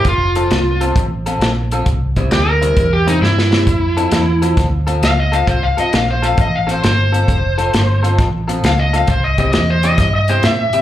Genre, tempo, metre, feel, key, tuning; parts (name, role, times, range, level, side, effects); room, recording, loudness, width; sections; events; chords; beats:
electric blues shuffle; 133 BPM; 4/4; swing 67% on 8ths; A4 = 445 Hz
overdriven slide guitar; melody; 0.0-10.8 s; Eb4 to F5; -17 LUFS; equal; slapback echo
electric guitar through a small old amp; riff; 0.0-10.8 s; C3 to A4; -21 LUFS; left 2 dB; wide subtle chorus, slapback echo
vintage muted fingered electric bass; bass; 0.0-10.8 s; F1 to A2; -17 LUFS; equal
vintage drum kit; drums; 0.0-10.8 s; hi-hat, kick drum, snare drum; -18 LUFS; equal
light reverb; live gig heard through the venue's PA, club reverb; -12 LUFS; side -12 dB against mid
0.0-10.8 A section
electric slide guitar solo 0.0-10.8; drum fill 3.2-3.7
0.1 F; 1.9 C; 3.7 F; 9.1 C
| 0.06 0.51 0.96 1.41 | 1.86 2.31 2.77 3.22 | 3.67 4.12 4.57 5.03 | 5.48 5.93 6.38 6.83 | 7.28 7.73 8.18 8.63 | 9.08 9.53 9.98 10.43